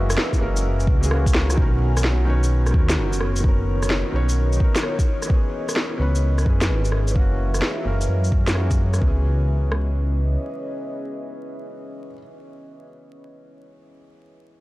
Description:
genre	future garage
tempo	129 BPM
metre	4/4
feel	swing 67% on 16ths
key	C# dorian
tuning	A4 = 439 Hz
part	felt-muted upright piano	accompaniment	0.0-14.6 s	D#3 to C#5	-30 LUFS	left 1 dB	sidechain pumping, low-pass filter, tape echo
part	deep dark ambient pad	sustained chords	0.0-12.4 s	B3 to A#5	-31 LUFS	right 1 dB	chorus, built-in reverb, sidechain pumping
part	dark detuned saw bass	bass	0.0-10.4 s	F#1 to F#2	-20 LUFS	equal	sidechain pumping
part	electronic rim click, shaker and snare drum	drums	0.1-9.0 s	none	-26 LUFS	equal	none
part	organic electronic drum kit	drums	0.3-9.9 s	kick drum, rim click	-20 LUFS	equal	none
room	digital ambience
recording	dry, gritty hardware recording, vinyl crackle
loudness	-18 LUFS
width	side -18 dB against mid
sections	0.0-1.6 A section; 1.6-9.0 B section; 9.0-12.7 C section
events	none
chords	0.0 F#7; 1.6 Bmaj9; 5.3 C#m7; 7.2 F#7; 9.0 C#m7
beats	0.18 0.64 1.11 | 1.57 2.04 2.50 2.97 | 3.43 3.90 4.36 4.83 | 5.29 5.76 6.22 6.69 | 7.15 7.62 8.08 8.55 | 9.01 9.48 9.94 10.41 | 10.87 11.34 11.80 12.27

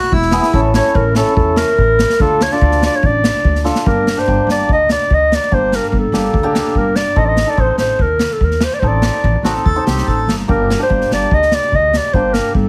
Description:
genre	klezmer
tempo	145 BPM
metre	4/4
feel	straight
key	D harmonic minor, G minor from 3.9 s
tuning	A4 = 439 Hz
part	accordion	second line	0.0-0.6, 9.4-10.4 s	E4 to A4	-21 LUFS	equal	none
part	upright bass	bass	0.1-12.7 s	E1 to E2	-20 LUFS	equal	none
part	street-band drum kit	drums	0.1-12.6 s	kick drum, snare drum	-21 LUFS	equal	none
part	hammered dulcimer	accompaniment	0.3-12.5 s	Bb3 to A4	-22 LUFS	equal	none
part	mellow clarinet	melody	0.7-12.7 s	A4 to Eb5	-18 LUFS	equal	none
room	light reverb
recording	heavily compressed radio sound, multiband compression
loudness	-14 LUFS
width	mono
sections	0.0-3.9 A section; 3.9-12.7 B section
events	drum fill 3.7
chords	0.0 E; 0.5 A; 2.2 Dm; 3.9 Gm; 7.2 Adim; 10.5 Gm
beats	0.12 | 0.53 0.95 1.37 1.78 | 2.20 2.62 3.03 3.45 | 3.86 4.28 4.69 5.11 | 5.52 5.93 6.35 6.76 | 7.18 7.59 8.00 8.42 | 8.83 9.24 9.66 10.07 | 10.48 10.90 11.31 11.72 | 12.14 12.55

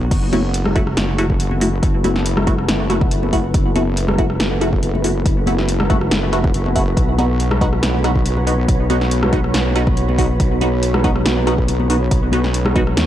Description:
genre	deep dubstep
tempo	140 BPM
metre	4/4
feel	swing 53% on 16ths, half-time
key	F# minor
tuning	A4 = 438 Hz
part	deep dark ambient pad	sustained chords	0.0-13.1 s	B3 to C#5	-26 LUFS	equal	chorus, built-in reverb
part	wobble bass	bass	0.0-13.1 s	F#1 to D#2	-19 LUFS	equal	chorus
part	deep house drum kit	drums	0.1-13.1 s	crash cymbal, hi-hat, rim click, snare drum	-23 LUFS	equal	overdrive
part	electronic kick drum	drums	0.1-12.8 s	none	-18 LUFS	equal	overdrive
part	wind-like tuned noise texture	texture	1.4-13.1 s	B3 to B4	-28 LUFS	right 2 dB	built-in reverb
part	filtered dub chord stab	stabs	0.3-12.8 s	A3 to F#4	-23 LUFS	right 1 dB	phaser, dub echo
part	congas	percussion	0.3-12.7 s	none	-25 LUFS	left 2 dB	dub echo
room	little or no reverb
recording	dry, gritty hardware recording, transformer saturation, cassette tape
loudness	-14 LUFS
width	side -12 dB against mid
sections	0.0-13.1 A section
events	none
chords	0.1 F#m7; 7.0 B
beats	| 0.11 0.54 0.97 1.40 | 1.83 2.26 2.69 3.11 | 3.54 3.97 4.40 4.83 | 5.26 5.68 6.11 6.54 | 6.97 7.40 7.83 8.26 | 8.69 9.11 9.54 9.97 | 10.40 10.83 11.26 11.69 | 12.11 12.54 12.97

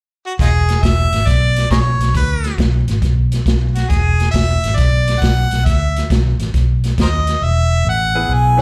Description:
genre	electric blues shuffle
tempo	137 BPM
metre	4/4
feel	swing 67% on 8ths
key	E mixolydian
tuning	A4 = 441 Hz
part	clear harmonica	melody	0.3-8.6 s	D#4 to G#5	-21 LUFS	equal	overdrive
part	vintage muted fingered electric bass	bass	0.4-8.6 s	E1 to D#2	-18 LUFS	equal	none
part	vintage drum kit	drums	0.4-7.3 s	hi-hat, kick drum, snare drum	-20 LUFS	equal	none
part	bright upright piano	accompaniment	8.2-8.6 s	B3 to C#5	-24 LUFS	equal	slapback echo
room	little or no reverb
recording	live gig heard through the venue's PA, club reverb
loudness	-15 LUFS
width	mono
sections	0.4-7.4 A section; 7.4-8.6 B section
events	none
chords	0.4 E5; 6.5 B; 7.4 E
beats	| 0.39 0.83 1.27 1.71 | 2.15 2.59 3.02 3.46 | 3.90 4.34 4.78 5.22 | 5.66 6.10 6.54 6.98 | 7.42 7.86 8.29

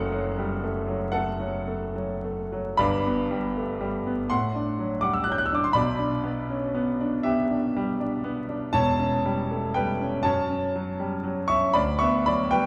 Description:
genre	classical, romantic nocturne for solo piano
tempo	40 BPM (dotted quarters)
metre	6/8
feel	uneven beats, rubato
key	unclear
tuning	A4 = 441 Hz
part	clear concert grand piano	solo	0.0-12.7 s	E1 to G6	-26 LUFS	equal	none
room	wet recital hall reverb, RT60 1.5 s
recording	heard from further back in the room, vinyl crackle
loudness	-26 LUFS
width	mono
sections	0.0-12.7 A section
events	none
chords	0.0 F#m; 2.8 G; 4.3 D7/A; 5.7 G/B; 8.7 C#dim/E; 10.2 F#m; 11.7 Bm/D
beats	1.12 | 2.78 4.29 | 5.74 7.24 | 8.74 10.25 | 11.74

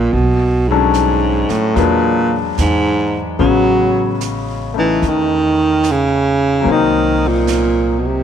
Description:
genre	jazz ballad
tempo	74 BPM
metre	4/4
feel	swing 68% on 8ths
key	unclear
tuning	A4 = 440 Hz
part	breathy baritone saxophone	melody	0.0-8.2 s	G#2 to F#3	-15 LUFS	right 3 dB	none
part	bright upright piano	accompaniment	0.0-8.2 s	C#3 to B4	-18 LUFS	left 11 dB	none
part	upright bass	bass	0.0-8.2 s	A1 to E2	-20 LUFS	right 1 dB	none
part	jazz brush drum kit	drums	0.1-8.2 s	brushed snare drum, hi-hat, snare drum	-32 LUFS	right 9 dB	none
room	moderate echo chamber reverb, RT60 2.6 s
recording	1960s-style stereo with parts hard left and right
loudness	-12 LUFS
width	side -8 dB against mid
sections	0.0-8.2 A section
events	none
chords	0.1 Bm7; 1.8 E9; 3.4 Amaj7; 6.6 Cm7b5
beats	| 0.13 0.95 1.76 2.58 | 3.39 4.20 5.01 5.83 | 6.65 7.46

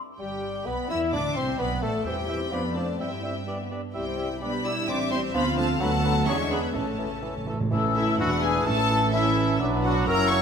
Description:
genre	quick classical-period movement for symphony orchestra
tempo	128 BPM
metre	2/4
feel	straight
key	C major, A major from 5.8 s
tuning	A4 = 440 Hz
part	clear studio violin section	melody	0.2-10.4 s	E5 to E6	-31 LUFS	left 3 dB	none
part	mellow hollow small flute group	second line	0.2-10.4 s	G4 to E6	-33 LUFS	left 5 dB	none
part	warm clarinet	second line	0.2-10.4 s	C#4 to E5	-35 LUFS	left 2 dB	none
part	warm cor anglais	second line	0.2-10.4 s	G4 to E5	-36 LUFS	right 2 dB	none
part	warm bassoon	accompaniment	0.2-10.4 s	E3 to E4	-34 LUFS	right 1 dB	none
part	warm studio viola section	accompaniment	0.2-10.4 s	G3 to C#5	-32 LUFS	right 1 dB	none
part	warm French horn section	sustained chords	0.2-10.4 s	E3 to E4	-33 LUFS	left 5 dB	none
part	dark studio double bass section	bass	0.2-10.4 s	E1 to G2	-32 LUFS	right 4 dB	none
part	warm studio cello section	bass	0.2-10.4 s	E2 to E4	-32 LUFS	right 2 dB	none
part	dark studio violin section	second line	0.7-10.4 s	A3 to F#5	-35 LUFS	left 4 dB	none
part	timpani	percussion	1.1-2.5, 4.9-8.2 s	E2 to A2	-34 LUFS	right 2 dB	none
part	clear trumpet	stabs	8.0-10.4 s	E4 to C#5	-31 LUFS	right 3 dB	none
room	moderate concert hall reverb, RT60 2.3 s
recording	none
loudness	-23 LUFS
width	side -7 dB against mid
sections	0.2-7.7 A section; 7.7-10.4 B section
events	timpani fill 6.8-7.7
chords	0.2 N.C.; 0.7 Bmadd11; 1.1 Cadd9; 1.6 D5; 2.1 C/E; 2.5 Dm7/F; 3.0 C/G; 3.5 G; 3.9 C; 4.4 G/B; 4.9 Am7; 5.3 Dm7; 5.8 Bm7/D; 6.3 E13; 6.8 A; 8.2 E7; 8.7 A; 9.6 Bm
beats	| 0.20 0.67 | 1.13 1.60 | 2.06 2.53 | 3.00 3.48 | 3.95 4.42 | 4.88 5.35 | 5.81 6.27 | 6.75 7.24 | 7.72 8.20 | 8.67 9.14 | 9.61 10.07

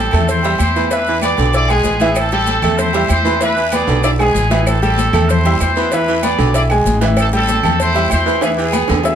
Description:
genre	latin, salsa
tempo	192 BPM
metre	4/4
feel	straight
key	A minor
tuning	A4 = 440 Hz
part	bright trumpet section	melody	0.0-9.2 s	B3 to D5	-18 LUFS	equal	plate reverb
part	bright baby grand piano	accompaniment	0.0-9.2 s	E3 to E6	-18 LUFS	equal	none
part	upright bass	bass	0.0-9.2 s	A1 to E2	-18 LUFS	equal	none
part	raspy baritone saxophone	second line	0.1-9.2 s	D3 to A3	-22 LUFS	right 5 dB	none
part	agogo bells and timbales	percussion	0.1-9.2 s	none	-25 LUFS	right 8 dB	none
part	claves	percussion	0.1-8.9 s	none	-30 LUFS	left 2 dB	none
part	congas	percussion	0.1-9.2 s	none	-24 LUFS	left 2 dB	none
part	guiro	percussion	0.1-9.2 s	none	-33 LUFS	left 6 dB	none
part	maracas	percussion	0.1-9.2 s	none	-33 LUFS	right 7 dB	none
part	cowbell	percussion	0.3-9.2 s	none	-26 LUFS	left 3 dB	none
room	moderate studio reverb, RT60 0.6 s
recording	none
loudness	-12 LUFS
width	side -9 dB against mid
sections	0.0-9.2 A section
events	drum fill 3.9-4.7, 8.4-9.2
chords	0.0 Am; 0.9 E7; 2.2 Am7; 3.4 E7; 4.7 Am7; 5.9 E7; 7.2 Am7; 8.4 E7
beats	0.29 0.60 | 0.91 1.23 1.54 1.85 | 2.16 2.48 2.79 3.10 | 3.41 3.73 4.04 4.35 | 4.66 4.98 5.29 5.60 | 5.92 6.23 6.54 6.85 | 7.17 7.48 7.79 8.11 | 8.42 8.73 9.04

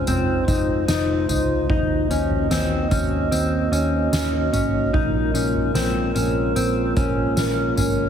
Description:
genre	dream pop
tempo	74 BPM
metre	4/4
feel	straight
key	Bb minor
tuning	A4 = 440 Hz
part	glass harmonica	sustained chords	0.0-8.1 s	Ab3 to Eb5	-25 LUFS	right 1 dB	none
part	mellow electric guitar	arpeggios	0.0-8.1 s	C4 to Eb4	-22 LUFS	left 2 dB	wide subtle chorus, digital delay
part	vintage muted picked electric bass	bass	0.0-8.1 s	F1 to Eb2	-25 LUFS	equal	none
part	soft-mallet drum kit	drums	0.1-8.0 s	kick drum, snare drum, tambourine, toms	-25 LUFS	right 1 dB	none
room	light reverb, small room ambience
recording	heavily compressed radio sound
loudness	-18 LUFS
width	side -8 dB against mid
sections	0.0-8.1 A section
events	none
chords	0.0 Fm7; 1.7 Ebm7; 4.9 Bbm7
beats	0.08 0.89 | 1.70 2.51 3.32 4.13 | 4.94 5.75 6.56 7.38

